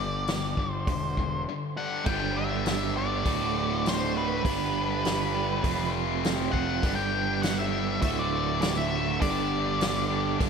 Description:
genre	classic rock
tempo	101 BPM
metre	4/4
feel	straight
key	unclear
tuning	A4 = 440 Hz
part	octave-fuzz lead guitar	melody	0.0-10.5 s	B4 to G5	-31 LUFS	left 1 dB	distortion
part	tight distorted guitar	riff	0.0-10.5 s	D2 to G4	-32 LUFS	left 8 dB	distortion, slapback echo
part	fuzz picked electric bass	bass	0.0-10.5 s	D1 to G1	-33 LUFS	equal	overdrive
part	vintage drum kit	drums	0.3-10.5 s	crash cymbal, hi-hat, kick drum, snare drum	-31 LUFS	equal	none
part	crunchy overdriven guitar	riff	2.0-10.5 s	D2 to G3	-30 LUFS	right 10 dB	harmonic tremolo
room	moderate concert hall reverb, RT60 2.1 s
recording	big arena sound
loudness	-25 LUFS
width	side -6 dB against mid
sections	0.0-2.1 A section; 2.1-10.5 B section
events	break 1.5-2.1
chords	0.0 G5; 2.1 G; 3.3 D; 4.4 G; 5.6 F; 6.8 G; 8.0 D; 9.2 G

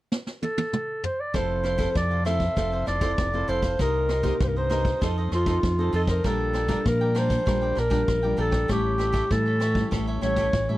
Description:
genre	samba and choro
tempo	98 BPM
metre	4/4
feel	straight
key	F major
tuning	A4 = 440 Hz
part	vintage brush drum kit	drums	0.1-10.7 s	kick drum, ride cymbal, rim click, snare drum, toms	-29 LUFS	equal	none
part	mellow clarinet	melody	0.4-10.8 s	F4 to E5	-26 LUFS	equal	none
part	cavaquinho	accompaniment	1.3-10.8 s	D4 to G5	-34 LUFS	right 3 dB	none
part	nylon-string guitar	accompaniment	1.3-10.8 s	G2 to A4	-30 LUFS	left 1 dB	none
part	deep dub fingered electric bass	bass	1.3-10.8 s	F1 to Bb2	-26 LUFS	equal	none
room	little or no reverb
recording	dry, close 1970s-style studio recording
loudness	-22 LUFS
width	side -16 dB against mid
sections	0.0-1.3 A section; 1.3-10.8 B section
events	drum fill 0.1-1.3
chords	0.0 N.C.; 1.3 Fmaj7; 3.8 Cm7; 5.0 F7; 6.2 Bb6; 8.7 A7

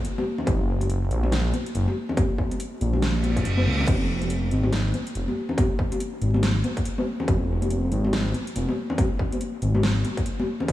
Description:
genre	deep dubstep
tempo	141 BPM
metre	4/4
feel	swing 60% on 16ths, half-time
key	F phrygian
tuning	A4 = 440 Hz
part	dubstep drum kit	drums	0.0-10.7 s	crash cymbal, hi-hat, snare drum	-32 LUFS	equal	studio reverb
part	congas	percussion	0.2-10.7 s	none	-28 LUFS	left 2 dB	dub echo
part	dark detuned saw bass	bass	0.5-10.7 s	F1 to Db2	-23 LUFS	equal	none
part	electronic kick drum	drums	0.5-10.7 s	none	-25 LUFS	equal	distortion, studio reverb
part	reverse cymbal	sound effects	3.2-3.9 s	none	-33 LUFS	right 2 dB	none
room	light reverb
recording	vinyl crackle, small room ambience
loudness	-22 LUFS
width	side -14 dB against mid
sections	0.0-10.7 A section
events	reverse cymbal 3.2-3.9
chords	none

